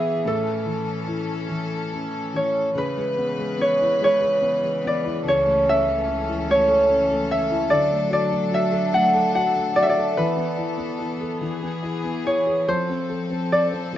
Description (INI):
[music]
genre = children's music, lullaby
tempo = 48 BPM (dotted quarters)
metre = 6/8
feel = rubato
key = A major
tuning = A4 = 441 Hz
[part]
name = concert harp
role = melody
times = 0.0-14.0 s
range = G#4 to F#5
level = -20 LUFS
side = right 1 dB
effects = none
[part]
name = felt-muted upright piano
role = accompaniment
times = 0.0-14.0 s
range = A2 to A4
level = -28 LUFS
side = left 3 dB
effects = none
[part]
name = rich chamber string section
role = sustained chords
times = 0.0-14.0 s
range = C#2 to B4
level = -28 LUFS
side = left 1 dB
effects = none
[sound]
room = light reverb, small room ambience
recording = rough home demo mix, nothing above 7.8 kHz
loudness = -19 LUFS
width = side -12 dB against mid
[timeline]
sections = 0.0-2.8 A section; 2.8-14.0 B section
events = none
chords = 0.2 A; 2.8 C#m7; 5.3 A/C#; 7.7 D; 10.2 Esus4; 11.4 E; 12.7 F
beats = | 0.25 1.50 | 2.76 4.01 | 5.25 6.48 | 7.70 8.93 | 10.17 11.42 | 12.68 13.94